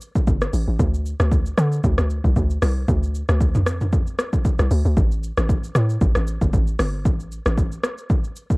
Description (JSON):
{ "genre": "amapiano", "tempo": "115 BPM", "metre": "4/4", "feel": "swing 55% on 16ths", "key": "unclear", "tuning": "A4 = 438 Hz", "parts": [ { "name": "deep house drum kit", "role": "drums", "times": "0.0-8.6 s", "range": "hi-hat, kick drum, rim click, shaker, toms", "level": "-20 LUFS", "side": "equal", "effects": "cassette tape" }, { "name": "hollow log drum bass", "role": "bass", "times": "0.3-7.8 s", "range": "G1 to D3", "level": "-20 LUFS", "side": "equal", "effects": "none" } ], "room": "little or no reverb", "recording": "home recording on cassette", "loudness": "-18 LUFS", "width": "side -27 dB against mid", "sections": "0.0-8.6 A section", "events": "none", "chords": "none", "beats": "0.27 | 0.80 1.32 1.84 2.36 | 2.88 3.40 3.92 4.45 | 4.97 5.49 6.01 6.53 | 7.06 7.58 8.10" }